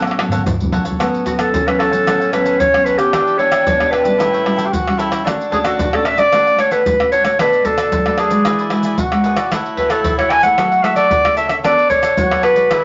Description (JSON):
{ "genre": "samba and choro", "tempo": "113 BPM", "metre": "4/4", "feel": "straight", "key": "A major", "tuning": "A4 = 440 Hz", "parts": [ { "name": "cavaquinho", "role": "accompaniment", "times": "0.0-12.8 s", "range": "D4 to G5", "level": "-27 LUFS", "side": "equal", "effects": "none" }, { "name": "nylon-string guitar", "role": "accompaniment", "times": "0.0-12.8 s", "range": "A2 to C#5", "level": "-26 LUFS", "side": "equal", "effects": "none" }, { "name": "tamborim, maracas, pandeiro and surdo", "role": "percussion", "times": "0.0-12.8 s", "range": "none", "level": "-23 LUFS", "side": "equal", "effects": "none" }, { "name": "breathy tenor saxophone", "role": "second line", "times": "1.0-12.8 s", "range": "B3 to G4", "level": "-24 LUFS", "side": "equal", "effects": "none" }, { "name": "warm clarinet", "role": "melody", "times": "1.3-12.8 s", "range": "F#4 to G#5", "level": "-16 LUFS", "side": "equal", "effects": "none" } ], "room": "wet studio reverb, RT60 0.6 s", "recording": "nothing above 7.5 kHz", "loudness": "-15 LUFS", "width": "mono", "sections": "0.0-1.0 A section; 1.0-12.8 B section", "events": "drum fill 0.0-1.0", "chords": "0.0 A69; 3.1 Em7; 4.2 A13; 5.3 Dmaj7; 7.4 Bm7; 8.5 E9; 9.5 A6; 10.6 F#m9; 11.6 Bm9" }